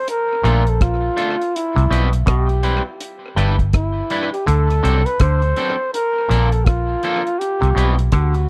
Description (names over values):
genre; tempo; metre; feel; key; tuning
roots reggae; 82 BPM; 4/4; swing 60% on 16ths; unclear; A4 = 440 Hz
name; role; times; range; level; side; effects
breathy flugelhorn; melody; 0.0-8.5 s; E4 to C5; -24 LUFS; equal; tape echo
deep reggae drum kit; drums; 0.1-8.5 s; hi-hat, kick drum, rim click; -22 LUFS; equal; tape echo
electric guitar at the edge of break-up; accompaniment; 0.4-7.9 s; F3 to B4; -28 LUFS; equal; tape echo
auto-wah clav; riff; 0.4-8.3 s; G2 to D3; -26 LUFS; equal; none
vintage muted fingered electric bass; bass; 0.4-8.5 s; G1 to D2; -19 LUFS; equal; none
room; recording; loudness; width
small room ambience; dry, close 1970s-style studio recording; -18 LUFS; mono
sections
0.0-8.5 A section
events
none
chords
0.1 Bbmaj7; 1.5 Cmaj7; 3.0 G6; 4.5 D7; 5.9 Bbmaj7; 7.4 Cmaj7